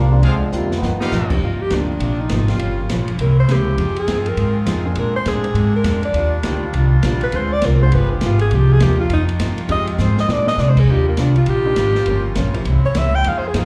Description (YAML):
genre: jazz, big band swing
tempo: 203 BPM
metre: 4/4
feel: swing 62% on 8ths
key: C minor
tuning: A4 = 440 Hz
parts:
  - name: warm trombone section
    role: second line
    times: 0.0-1.1 s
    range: C3 to D4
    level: -26 LUFS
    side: equal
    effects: plate reverb
  - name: fingerpicked steel-string acoustic guitar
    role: accompaniment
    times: 0.0-13.7 s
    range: G2 to Ab4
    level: -27 LUFS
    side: equal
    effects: plate reverb
  - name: upright bass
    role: bass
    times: 0.0-13.7 s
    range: G1 to C3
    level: -19 LUFS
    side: equal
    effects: none
  - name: warm grand piano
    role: accompaniment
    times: 0.1-12.6 s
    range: C3 to C5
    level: -31 LUFS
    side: equal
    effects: plate reverb
  - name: brilliant trumpet section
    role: stabs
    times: 0.2-1.4 s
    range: D4 to F5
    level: -29 LUFS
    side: equal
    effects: slapback echo
  - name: open jazz drum kit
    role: drums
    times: 0.2-13.6 s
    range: crash cymbal, hi-hat, kick drum, ride cymbal, snare drum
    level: -29 LUFS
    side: equal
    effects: none
  - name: warm alto saxophone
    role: melody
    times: 1.4-13.7 s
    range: Bb3 to G5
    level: -23 LUFS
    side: equal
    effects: plate reverb, slapback echo
  - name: muted trombone section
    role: sustained chords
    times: 1.4-13.7 s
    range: C3 to Ab4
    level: -34 LUFS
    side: equal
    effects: plate reverb
room: light reverb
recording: live gig heard through the venue's PA, club reverb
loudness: -17 LUFS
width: mono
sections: 0.0-1.4 A section; 1.4-10.9 B section; 10.9-13.7 B section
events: trombone section solo 0.0-1.4; drum fill 0.5-1.1, 10.0-10.6; alto saxophone solo 1.4-13.7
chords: 0.2 Dm7b5; 0.8 G7alt; 1.4 Cm11; 2.6 Gm7b5; 3.2 C7b9; 3.8 Fm7; 5.0 Bb9; 6.2 Ebmaj9; 7.3 Dm7b5; 7.9 G7b9; 8.5 Cm11; 9.7 Fm7; 10.3 Bb9; 10.9 Ebmaj9; 12.1 Gm7b5; 12.7 C7b9